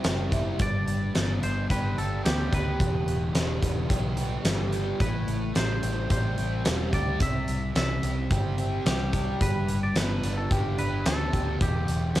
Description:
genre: rock, shoegaze and dream pop.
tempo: 109 BPM.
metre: 4/4.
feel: straight.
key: G major.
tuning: A4 = 439 Hz.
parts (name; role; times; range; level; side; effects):
fuzz guitar; riff; 0.0-12.2 s; E2 to G4; -30 LUFS; right 1 dB; distortion, lush chorus.
vintage muted fingered electric bass; bass; 0.0-12.2 s; E1 to D2; -30 LUFS; equal; none.
huge arena drum kit; drums; 0.0-12.2 s; hi-hat, kick drum, snare drum; -28 LUFS; equal; none.
twangy electric guitar; melody; 0.6-12.2 s; G4 to E5; -34 LUFS; equal; cassette tape, analog delay.
room: small room ambience.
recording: home recording on cassette.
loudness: -24 LUFS.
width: side -14 dB against mid.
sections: 0.0-12.2 A section.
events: none.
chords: 0.0 C; 0.6 G; 2.8 Em; 5.0 Am7; 7.2 C; 9.4 G; 11.6 Em.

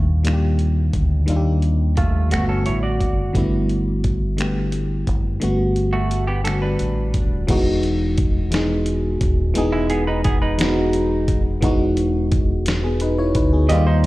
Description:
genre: slow six-eight R&B.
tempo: 58 BPM (dotted quarters).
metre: 6/8.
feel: straight.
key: unclear.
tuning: A4 = 440 Hz.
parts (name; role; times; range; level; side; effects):
semi-hollow electric guitar; second line; 0.0-14.1 s; G#3 to D#5; -25 LUFS; right 3 dB; warbly pitch drift, slapback echo.
FM electric piano; accompaniment; 0.0-14.1 s; A#2 to D5; -21 LUFS; left 1 dB; chorus, slapback echo.
deep dub fingered electric bass; bass; 0.0-14.1 s; D#1 to D#2; -21 LUFS; equal; none.
dusty soul sampler-style drum kit; drums; 0.2-14.1 s; crash cymbal, finger snaps, hi-hat, kick drum, snare drum; -23 LUFS; equal; none.
room: light reverb, digital ambience.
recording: live gig heard through the venue's PA, club reverb.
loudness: -17 LUFS.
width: side -18 dB against mid.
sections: 0.0-7.5 A section; 7.5-14.1 B section.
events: none.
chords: 0.0 D#maj9; 2.3 Gmaj9; 7.5 Emaj9.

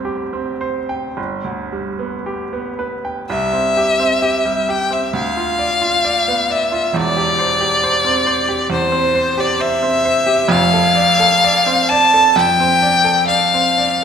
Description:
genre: classical, romantic duo for violin and grand piano.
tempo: 53-69 BPM.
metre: 4/4.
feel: rubato.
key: C major.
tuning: A4 = 439 Hz.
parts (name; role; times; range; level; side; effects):
bright baby grand piano; accompaniment; 0.0-14.0 s; E1 to G5; -19 LUFS; right 3 dB; none.
clear violin; melody; 3.3-14.0 s; C5 to A5; -14 LUFS; left 2 dB; none.
room: moderate scoring stage reverb, RT60 1.8 s.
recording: minimal, uncompressed stereo recording.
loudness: -13 LUFS.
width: side -7 dB against mid.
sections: 0.0-3.3 A section; 3.3-14.0 B section.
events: none.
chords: 0.0 Gsus4; 1.2 G; 3.3 C; 5.1 Bdim/D; 7.0 C/E; 10.5 Dm7/F.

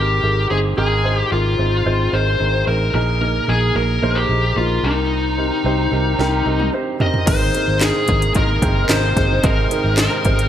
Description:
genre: piano-driven pop.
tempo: 111 BPM.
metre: 4/4.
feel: straight.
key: Ab major.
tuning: A4 = 440 Hz.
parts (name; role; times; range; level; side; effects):
smooth overdriven lead guitar; melody; 0.0-10.5 s; Eb4 to Eb5; -20 LUFS; left 2 dB; none.
warm grand piano; accompaniment; 0.0-10.5 s; Ab2 to C5; -22 LUFS; right 3 dB; wide subtle chorus.
vintage muted fingered electric bass; bass; 0.0-10.5 s; G1 to C2; -20 LUFS; equal; none.
house drum kit; drums; 6.2-10.5 s; crash cymbal, handclaps, hi-hat, kick drum, snare drum, toms; -19 LUFS; equal; overdrive, gated reverb.
rich symphonic string section; sustained chords; 7.3-10.5 s; C3 to Eb4; -28 LUFS; left 1 dB; none.
room: light reverb, digital ambience.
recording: bright 1980s-style digital production.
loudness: -15 LUFS.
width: side -10 dB against mid.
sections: 0.0-7.3 A section; 7.3-10.5 B section.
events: drum fill 6.2-7.3.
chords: 0.0 Abadd9; 2.9 Ebsus4/Bb; 4.8 Cm7; 7.3 Abadd9.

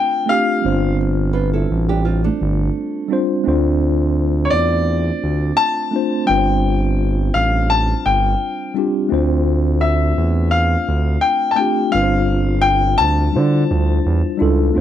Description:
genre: R&B, neo-soul.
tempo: 85 BPM.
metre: 4/4.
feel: swing 57% on 16ths.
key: D minor.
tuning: A4 = 441 Hz.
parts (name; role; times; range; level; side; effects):
bright grand piano; melody; 0.0-14.3 s; C#5 to A5; -19 LUFS; left 3 dB; none.
mellow tine electric piano; accompaniment; 0.0-14.8 s; G3 to C5; -20 LUFS; left 1 dB; medium stereo tremolo.
smooth gliding synth bass; bass; 0.6-14.8 s; G1 to D3; -17 LUFS; right 1 dB; none.
nylon-string guitar; second line; 1.3-3.3 s; A3 to B4; -23 LUFS; right 7 dB; none.
room: moderate small room reverb, RT60 0.5 s.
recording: none.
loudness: -15 LUFS.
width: side -10 dB against mid.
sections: 0.0-14.7 A section.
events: none.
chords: 0.0 Dm7; 0.6 G7sus4; 3.4 Dm7; 6.3 G7sus4; 9.1 Dm7; 11.9 G7sus4; 13.3 Dm11.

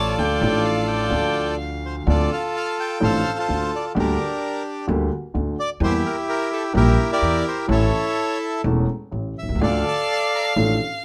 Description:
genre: tango.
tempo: 127 BPM.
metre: 4/4.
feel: rubato.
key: D minor.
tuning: A4 = 439 Hz.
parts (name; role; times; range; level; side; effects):
bandoneon; melody; 0.0-10.5 s; D4 to Bb5; -25 LUFS; equal; none.
warm violin; second line; 0.0-2.0, 9.6-11.0 s; F5 to A5; -29 LUFS; equal; none.
dark upright piano; accompaniment; 0.0-10.8 s; E1 to A4; -26 LUFS; equal; none.
upright bass; bass; 0.0-10.8 s; E1 to E2; -26 LUFS; equal; none.
room: light reverb.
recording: none.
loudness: -22 LUFS.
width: mono.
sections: 0.0-2.1 A section; 2.1-11.0 B section.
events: none.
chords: 0.2 Dm; 2.1 Dm7; 4.0 Gm/D; 5.8 Edim; 7.7 A; 9.6 Dm.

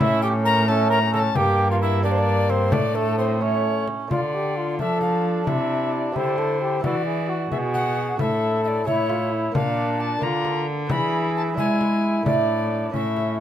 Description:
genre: classical, renaissance-style consort dance.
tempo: 88 BPM (dotted quarters).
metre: 6/8.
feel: straight.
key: unclear.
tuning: A4 = 440 Hz.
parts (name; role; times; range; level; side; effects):
alto recorder; melody; 0.0-13.4 s; A4 to B5; -26 LUFS; left 5 dB; none.
mellow cor anglais; second line; 0.0-13.4 s; A3 to Bb4; -27 LUFS; right 3 dB; none.
bright trombone; accompaniment; 0.0-13.4 s; A3 to A4; -26 LUFS; left 2 dB; none.
lute; accompaniment; 0.0-13.4 s; G2 to A4; -31 LUFS; right 5 dB; none.
warm cello; bass; 0.0-13.4 s; G2 to G#3; -25 LUFS; right 1 dB; none.
frame drum; percussion; 0.0-13.4 s; none; -28 LUFS; left 2 dB; none.
room: light reverb.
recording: close, detailed microphones.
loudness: -20 LUFS.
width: side -10 dB against mid.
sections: 0.0-4.1 A section; 4.1-13.4 B section.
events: none.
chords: 0.0 A; 1.4 Gm; 2.7 Asus4; 3.4 A; 4.1 Dm; 5.5 C; 6.8 E7; 8.2 Asus4; 8.9 A; 9.5 Bb; 10.9 E7; 12.3 Asus4.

